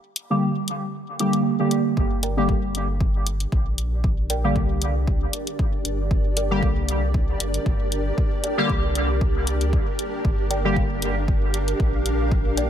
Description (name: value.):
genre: dub techno.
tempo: 116 BPM.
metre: 4/4.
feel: swing 54% on 16ths.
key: G minor.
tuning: A4 = 440 Hz.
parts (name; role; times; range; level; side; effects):
electronic hi-hat; drums; 0.2-12.7 s; none; -27 LUFS; left 2 dB; none.
resonant sweep polysynth; stabs; 0.3-10.8 s; D3 to G4; -24 LUFS; equal; chorus, phaser, sidechain pumping, dub echo.
granular cloud pad; sustained chords; 3.5-12.7 s; D4 to F5; -28 LUFS; right 1 dB; built-in reverb, sidechain pumping.
warm sub bass; bass; 2.0-12.7 s; G1 to D2; -25 LUFS; equal; sidechain pumping.
electronic kick drum; drums; 2.0-12.4 s; none; -24 LUFS; equal; none.
warbly dusty pluck; riff; 2.2-12.7 s; Bb4 to G5; -33 LUFS; right 1 dB; analog chorus, sidechain pumping, dub echo.
room: light reverb.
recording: none.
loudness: -20 LUFS.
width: side -9 dB against mid.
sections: 0.0-12.7 A section.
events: break 0.0-2.0; filter sweep on analog polysynth 0.0-12.7.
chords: 0.0 Gm.